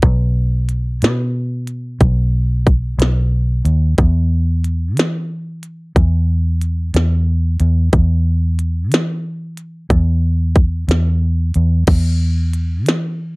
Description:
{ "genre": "slow blues", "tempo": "61 BPM (dotted quarters)", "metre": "12/8", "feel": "straight", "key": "unclear", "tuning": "A4 = 439 Hz", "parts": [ { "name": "vintage muted fingered electric bass", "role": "bass", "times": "0.0-13.4 s", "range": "B1 to E3", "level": "-15 LUFS", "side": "equal", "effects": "none" }, { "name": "minimal click drum kit", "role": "drums", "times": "0.0-13.0 s", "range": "crash cymbal, hi-hat, kick drum, snare drum", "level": "-15 LUFS", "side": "equal", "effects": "overdrive" } ], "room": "little or no reverb", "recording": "dark, warm production", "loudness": "-14 LUFS", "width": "side -29 dB against mid", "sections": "0.0-11.9 A section; 11.9-13.4 B section", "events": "none", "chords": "none" }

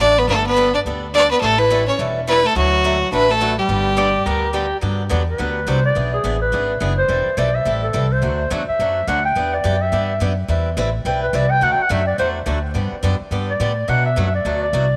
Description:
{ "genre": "country, western swing", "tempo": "212 BPM", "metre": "4/4", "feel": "swing 62% on 8ths", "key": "G major", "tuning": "A4 = 440 Hz", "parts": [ { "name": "clear fiddle", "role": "melody", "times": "0.0-4.5 s", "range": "F#4 to D5", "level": "-18 LUFS", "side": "equal", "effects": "none" }, { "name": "breathy clarinet", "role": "second line", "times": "0.0-15.0 s", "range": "F#3 to G5", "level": "-24 LUFS", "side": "equal", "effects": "none" }, { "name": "picked swing-style acoustic guitar", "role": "accompaniment", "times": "0.0-14.8 s", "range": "B2 to B4", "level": "-27 LUFS", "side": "equal", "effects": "none" }, { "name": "upright bass", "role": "bass", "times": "0.0-15.0 s", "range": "E1 to B2", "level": "-24 LUFS", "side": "equal", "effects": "none" }, { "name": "pedal steel guitar", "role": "second line", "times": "4.0-4.8 s", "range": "G4 to D5", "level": "-27 LUFS", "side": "equal", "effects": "none" } ], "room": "moderate plate reverb, RT60 3.4 s", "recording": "none", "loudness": "-18 LUFS", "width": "mono", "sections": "0.0-4.8 A section; 4.8-15.0 B section", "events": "clarinet solo 4.8-15.0", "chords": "0.3 Gadd9; 1.4 A7; 2.6 Dadd9; 3.7 G; 4.8 Gmaj7; 6.0 E7; 7.1 Am7/E; 8.2 D; 9.4 Em7; 10.5 Cmaj7; 11.6 D; 12.8 G; 13.9 Bm7" }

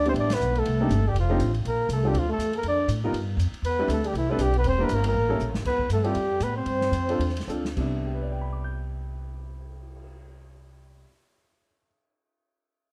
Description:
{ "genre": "jazz, small-group swing and bop", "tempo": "204-241 BPM", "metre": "4/4", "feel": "swing 58% on 8ths", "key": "C major", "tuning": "A4 = 439 Hz", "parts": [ { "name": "warm flugelhorn", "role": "melody", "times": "0.0-7.4 s", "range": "E4 to D5", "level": "-30 LUFS", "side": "equal", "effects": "none" }, { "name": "trombone with bucket mute", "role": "second line", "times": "0.0-7.5 s", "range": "E3 to D4", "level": "-32 LUFS", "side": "equal", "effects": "none" }, { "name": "upright bass", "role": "bass", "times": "0.0-11.0 s", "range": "E1 to A2", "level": "-30 LUFS", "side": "equal", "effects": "none" }, { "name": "warm upright piano", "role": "accompaniment", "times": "0.1-11.9 s", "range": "C3 to G6", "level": "-33 LUFS", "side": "equal", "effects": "none" }, { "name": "open jazz drum kit", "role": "drums", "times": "0.1-10.0 s", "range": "crash cymbal, cymbal swell, hi-hat, kick drum, ride cymbal, snare drum", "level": "-40 LUFS", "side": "equal", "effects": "none" } ], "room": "moderate large studio reverb, RT60 1.2 s", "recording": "none", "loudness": "-25 LUFS", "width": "mono", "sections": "0.0-5.6 A section; 5.6-7.8 B section; 7.8-10.1 C section", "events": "band accent 0.3; drum fill 5.4, 7.5; slowing down 5.6-7.8", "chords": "0.0 Em7; 0.7 Cm7; 1.2 F13; 1.7 Bbmaj13; 2.7 Dmadd11; 3.2 Fsus2; 3.6 Cmaj9; 4.6 Em7b5; 5.1 A7b9; 5.6 Dm9; 7.8 Cmaj9" }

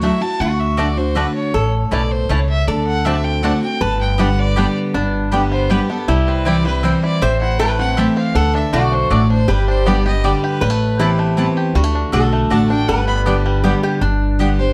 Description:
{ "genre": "bluegrass", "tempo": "159 BPM", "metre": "3/4", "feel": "straight", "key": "G major", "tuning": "A4 = 440 Hz", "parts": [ { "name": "bluegrass banjo", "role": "melody", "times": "0.0-14.0 s", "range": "G3 to G4", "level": "-27 LUFS", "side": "equal", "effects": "plate reverb" }, { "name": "clear fiddle", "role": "melody", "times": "0.0-14.7 s", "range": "G4 to B5", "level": "-26 LUFS", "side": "equal", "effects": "plate reverb" }, { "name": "lap resonator guitar", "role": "second line", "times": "0.0-14.7 s", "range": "D4 to C5", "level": "-25 LUFS", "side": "equal", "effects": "none" }, { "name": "picked steel-string acoustic guitar", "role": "accompaniment", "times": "0.0-14.7 s", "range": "G2 to G4", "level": "-22 LUFS", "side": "equal", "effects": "none" }, { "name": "upright bass", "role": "bass", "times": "0.0-14.7 s", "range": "G1 to D2", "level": "-21 LUFS", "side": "equal", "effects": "none" }, { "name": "mandolin", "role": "stabs", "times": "0.8-14.5 s", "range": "A3 to A5", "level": "-26 LUFS", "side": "equal", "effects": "none" } ], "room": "moderate studio reverb, RT60 0.6 s", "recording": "dark, warm production", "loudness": "-17 LUFS", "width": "mono", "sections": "0.0-4.9 A section; 4.9-14.0 B section", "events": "none", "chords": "0.4 D; 1.5 A; 2.7 D7; 3.8 G; 6.1 C; 7.2 Am; 8.4 D; 9.5 G; 10.6 Amadd9; 11.8 D; 12.9 G" }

